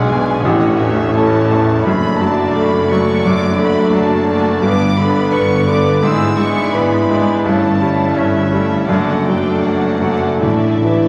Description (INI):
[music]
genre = classical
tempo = 71-89 BPM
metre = 4/4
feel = rubato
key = D major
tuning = A4 = 440 Hz
[part]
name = bright grand piano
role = melody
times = 0.0-11.1 s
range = A1 to C#4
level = -18 LUFS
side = equal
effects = none
[part]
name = warm chamber violin section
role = melody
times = 0.0-11.1 s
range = E5 to E6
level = -26 LUFS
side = equal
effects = none
[part]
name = rich chamber violin section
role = second line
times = 0.0-11.1 s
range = E4 to D5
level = -26 LUFS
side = equal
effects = none
[part]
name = warm studio viola section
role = accompaniment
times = 0.0-11.1 s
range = A3 to E4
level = -26 LUFS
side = equal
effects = none
[part]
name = dark French horn section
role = sustained chords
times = 0.0-11.1 s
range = G#3 to E4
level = -22 LUFS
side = equal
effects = none
[part]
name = rich chamber double bass section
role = bass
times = 0.0-11.1 s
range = F#1 to B1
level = -24 LUFS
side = equal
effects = none
[part]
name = warm chamber cello section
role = bass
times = 0.0-11.1 s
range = F#2 to B2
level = -27 LUFS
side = equal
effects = none
[part]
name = timpani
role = percussion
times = 0.4-1.5, 10.4-11.1 s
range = A2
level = -28 LUFS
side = equal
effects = none
[sound]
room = wet scoring stage reverb, RT60 1.9 s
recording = vinyl crackle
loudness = -14 LUFS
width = mono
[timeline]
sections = 0.0-11.1 A section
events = none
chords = 0.4 A; 1.9 D/F#; 4.6 G; 6.0 E7/G#; 7.5 A7/G; 8.9 D/F#; 10.4 Asus4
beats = 0.42 1.16 | 1.85 2.54 3.24 3.94 | 4.63 5.33 6.04 6.74 | 7.45 8.16 8.89 9.63 | 10.42